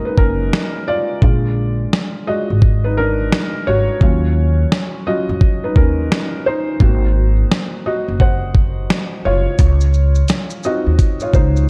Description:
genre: lo-fi hip hop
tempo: 86 BPM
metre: 4/4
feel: swing 64% on 16ths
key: Eb minor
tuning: A4 = 440 Hz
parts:
  - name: felt-muted upright piano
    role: accompaniment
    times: 0.0-11.7 s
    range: D3 to Gb5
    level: -22 LUFS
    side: equal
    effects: low-pass filter
  - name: upright bass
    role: bass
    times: 0.2-11.6 s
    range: Gb1 to F2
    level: -18 LUFS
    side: equal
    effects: none
  - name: dusty soul sampler-style drum kit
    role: drums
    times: 0.2-11.7 s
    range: hi-hat, kick drum, shaker, snare drum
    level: -18 LUFS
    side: equal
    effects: none
room: little or no reverb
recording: dark, warm production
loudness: -16 LUFS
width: mono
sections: 0.0-11.7 A section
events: break 0.0-9.6; felt piano solo 0.0-11.7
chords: 0.0 Gb6; 1.2 Bb7; 4.0 Ebm7; 6.8 Ab7; 9.6 Dbmaj7

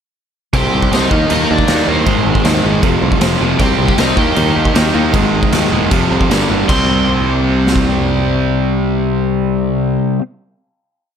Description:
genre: punk rock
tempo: 156 BPM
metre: 4/4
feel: straight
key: C minor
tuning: A4 = 439 Hz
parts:
  - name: crunchy overdriven guitar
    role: melody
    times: 0.5-10.0 s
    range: C4 to C6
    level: -21 LUFS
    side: equal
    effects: none
  - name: cranked stack guitar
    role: riff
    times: 0.5-10.2 s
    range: F2 to Eb4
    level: -17 LUFS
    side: right 10 dB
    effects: overdrive
  - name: sludgy distorted guitar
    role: riff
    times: 0.5-10.2 s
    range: F2 to Eb4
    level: -17 LUFS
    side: left 11 dB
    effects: overdrive
  - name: modern bright picked electric bass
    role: bass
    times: 0.5-10.0 s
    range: E1 to Eb2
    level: -19 LUFS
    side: equal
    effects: none
  - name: raw garage drum kit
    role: drums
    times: 0.5-7.8 s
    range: crash cymbal, kick drum, snare drum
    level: -16 LUFS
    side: equal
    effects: none
room: little or no reverb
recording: none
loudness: -11 LUFS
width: side -8 dB against mid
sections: 0.5-6.7 riff; 6.7-9.8 final chord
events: none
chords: 0.5 Cm; 1.1 Eb5; 2.1 Ab; 2.8 F5; 3.6 Cm; 4.2 Eb; 5.1 Ab5; 5.9 F5; 6.3 G5; 6.7 C5

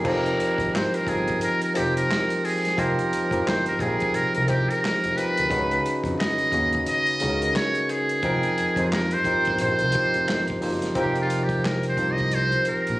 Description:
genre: R&B, neo-soul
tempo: 88 BPM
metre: 4/4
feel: swing 60% on 16ths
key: F minor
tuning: A4 = 441 Hz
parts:
  - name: trumpet with metal mute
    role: melody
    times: 0.0-13.0 s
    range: F4 to Eb5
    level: -24 LUFS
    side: right 1 dB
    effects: none
  - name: barky tine electric piano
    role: accompaniment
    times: 0.0-13.0 s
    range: Db3 to G5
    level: -25 LUFS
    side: equal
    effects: none
  - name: warm soul drum kit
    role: drums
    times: 0.0-13.0 s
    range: crash cymbal, handclaps, hi-hat, kick drum, snare drum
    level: -31 LUFS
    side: equal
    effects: none
  - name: smooth gliding synth bass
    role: bass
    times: 0.1-13.0 s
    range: F1 to F2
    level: -29 LUFS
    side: equal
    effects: none
room: light reverb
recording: recorded on a phone in the room, studio reverb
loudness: -21 LUFS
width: side -18 dB against mid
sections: 0.0-11.0 A section; 11.0-13.0 B section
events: muted trumpet solo 11.0-13.0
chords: 0.0 F9sus4; 5.5 Db9sus4; 8.2 F9sus4

